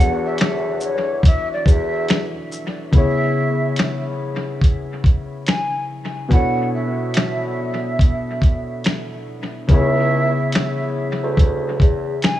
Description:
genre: lo-fi hip hop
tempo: 71 BPM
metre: 4/4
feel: swing 62% on 16ths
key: unclear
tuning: A4 = 437 Hz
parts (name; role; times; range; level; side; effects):
- breathy hollow jazz flute; melody; 0.0-12.4 s; C#5 to G#5; -25 LUFS; right 2 dB; low-pass filter, dub echo
- felt-muted upright piano; accompaniment; 0.0-12.4 s; B2 to C#5; -23 LUFS; left 2 dB; low-pass filter, dub echo
- mellow bassoon; bass; 0.0-2.3, 9.7-12.2 s; C#2 to E2; -23 LUFS; left 1 dB; none
- dusty soul sampler-style drum kit; drums; 0.0-12.4 s; finger snaps, hi-hat, kick drum, shaker, snare drum; -17 LUFS; equal; dub echo
room: light reverb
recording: echo-heavy mix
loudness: -16 LUFS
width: side -13 dB against mid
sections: 0.0-2.9 A section; 2.9-12.4 B section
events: none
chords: 0.0 E13sus4; 2.9 C#m7; 6.3 Bm11; 9.7 C#m7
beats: 0.39 1.24 2.08 | 2.93 3.77 4.62 5.46 | 6.31 7.15 8.00 8.84 | 9.69 10.53 11.38 12.22

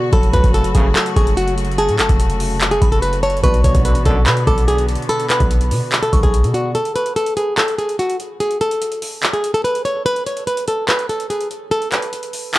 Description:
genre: hip hop, trap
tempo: 145 BPM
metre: 4/4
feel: half-time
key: unclear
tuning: A4 = 440 Hz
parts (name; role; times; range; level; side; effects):
- flamenco guitar; melody; 0.0-12.6 s; F#4 to C#5; -19 LUFS; equal; tape echo
- mellow tine electric piano; accompaniment; 0.0-6.8 s; B2 to D5; -26 LUFS; right 1 dB; slow stereo tremolo
- clear symphonic string section; sustained chords; 0.0-6.7 s; C#3 to F#4; -28 LUFS; left 3 dB; none
- glassy synth bell; second line; 0.1-6.3 s; A5 to D6; -27 LUFS; left 1 dB; chorus, tape echo
- hard-hitting 808-style bass; bass; 0.1-6.5 s; E#1 to B2; -18 LUFS; equal; none
- booming analog drum machine; drums; 0.1-12.6 s; handclaps, hi-hat, kick drum; -18 LUFS; equal; none
- bright brass ensemble; stabs; 0.5-0.9, 3.9-4.2 s; F#2 to D3; -30 LUFS; equal; tape echo
room: digital ambience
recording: dry, gritty hardware recording, cassette tape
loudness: -14 LUFS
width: side -17 dB against mid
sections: 0.0-6.7 A section; 6.7-12.6 B section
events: break 6.7-12.6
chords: 0.1 F#m; 3.4 Bm; 6.7 N.C.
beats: | 0.13 0.54 0.95 1.37 | 1.78 2.20 2.61 3.02 | 3.44 3.85 4.26 4.68 | 5.09 5.51 5.92 6.33 | 6.75 7.16 7.58 7.99 | 8.40 8.82 9.23 9.64 | 10.06 10.47 10.89 11.30 | 11.71 12.13 12.54

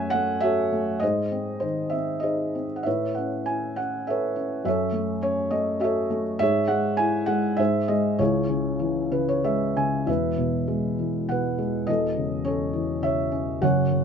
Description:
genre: classical, lyrical solo piano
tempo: 92-106 BPM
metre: 3/4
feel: rubato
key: C# minor, E major from 10.1 s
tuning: A4 = 440 Hz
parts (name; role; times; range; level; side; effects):
- felt-muted upright piano; solo; 0.0-14.0 s; E1 to G#5; -22 LUFS; equal; none
room: light reverb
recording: close, detailed microphones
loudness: -22 LUFS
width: side -7 dB against mid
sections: 0.0-10.1 A section; 10.1-14.0 B section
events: felt piano fill 8.8-10.1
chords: 0.0 F#m; 1.0 G#; 2.9 Aadd9; 4.7 F#m; 6.4 C#m/G#; 7.6 G#; 8.2 C#m; 10.1 Eadd9; 11.9 A/E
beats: 0.43 | 1.02 1.62 2.23 | 2.86 3.48 4.08 | 4.66 5.23 5.82 | 6.41 6.99 7.59 | 8.20 8.80 9.45 | 10.08 10.69 11.30 | 11.88 12.45 13.03 | 13.62

